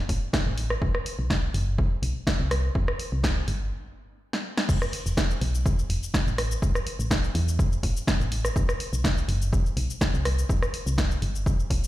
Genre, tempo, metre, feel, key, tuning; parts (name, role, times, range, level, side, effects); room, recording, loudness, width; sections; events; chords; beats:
piano house; 124 BPM; 4/4; straight; E minor; A4 = 441 Hz
solid FM bass; bass; 0.1-11.8 s; E1 to E2; -27 LUFS; equal; tube saturation, sidechain pumping
electronic kick drum; drums; 0.1-11.8 s; -25 LUFS; equal
punchy analog drum machine; drums; 0.1-11.9 s; cabasa, crash cymbal, hi-hat, rim click, snare drum; -29 LUFS; equal
little or no reverb; played on a big sound system in a bare room, large studio reverb; -23 LUFS; side -15 dB against mid
0.0-4.7 A section; 4.7-11.9 B section
stop 3.7-4.7; drum fill 4.3-4.7; drop 4.7-11.9
0.33 | 0.82 1.30 1.78 2.27 | 2.75 3.24 3.72 4.20 | 4.69 5.17 5.66 6.14 | 6.62 7.11 7.59 8.07 | 8.56 9.04 9.53 10.01 | 10.49 10.98 11.46